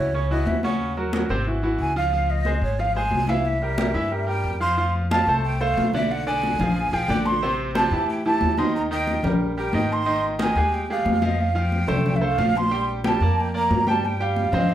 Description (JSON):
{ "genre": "Afro-Cuban jazz", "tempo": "182 BPM", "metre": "4/4", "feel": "straight", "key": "F major from 4.8 s", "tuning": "A4 = 440 Hz", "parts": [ { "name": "breathy mellow jazz flute", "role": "melody", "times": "0.0-14.7 s", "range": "Db5 to C6", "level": "-24 LUFS", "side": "right 2 dB", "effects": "none" }, { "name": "bright grand piano", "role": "accompaniment", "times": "0.0-14.7 s", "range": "C3 to G5", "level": "-26 LUFS", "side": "right 1 dB", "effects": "none" }, { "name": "upright bass", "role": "bass", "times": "0.0-14.7 s", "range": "Ab1 to A2", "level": "-26 LUFS", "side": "equal", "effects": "none" }, { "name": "congas", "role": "percussion", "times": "0.1-14.7 s", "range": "none", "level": "-26 LUFS", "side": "left 1 dB", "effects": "none" } ], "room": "wet studio reverb, RT60 0.5 s", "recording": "heard from further back in the room", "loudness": "-20 LUFS", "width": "side -11 dB against mid", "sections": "0.0-4.8 A section; 4.8-14.7 B section", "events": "none", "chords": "0.0 Gb5; 0.8 Ebm7; 1.5 Dbmadd11/Ab; 2.1 Dbmaj9; 3.5 C7; 4.8 F6; 6.1 Bm; 6.8 Bb7; 7.4 Am7; 8.7 Eb; 10.1 Ab5; 11.4 Fadd9; 12.7 Bb6; 14.0 G7sus4" }